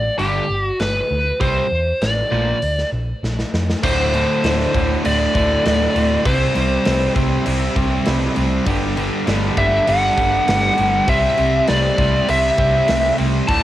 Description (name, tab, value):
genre	hard rock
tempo	100 BPM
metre	4/4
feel	straight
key	unclear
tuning	A4 = 442 Hz
part	biting lead guitar	melody	0.0-13.6 s	G4 to A5	-19 LUFS	equal	overdrive, cassette tape, tape echo
part	hollow-body short-scale picked electric bass	bass	0.0-13.6 s	D1 to F2	-22 LUFS	equal	none
part	cranked stack guitar	riff	0.2-13.6 s	D2 to C4	-25 LUFS	left 8 dB	overdrive, cassette tape
part	crunchy overdriven guitar	riff	0.2-13.6 s	D2 to C4	-23 LUFS	right 6 dB	cassette tape
part	big rock drum kit	drums	0.2-13.6 s	crash cymbal, hi-hat, kick drum, snare drum	-23 LUFS	equal	cassette tape
part	tight distorted guitar	riff	3.8-13.6 s	D2 to C5	-26 LUFS	equal	distortion, cassette tape
room	light reverb, studio reverb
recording	home recording on cassette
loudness	-15 LUFS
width	side -13 dB against mid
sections	0.0-3.8 A section; 3.8-13.6 B section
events	drum fill 3.2-3.8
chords	0.2 G; 1.4 C; 2.3 Bb; 3.8 D; 6.3 C; 8.7 G; 11.1 C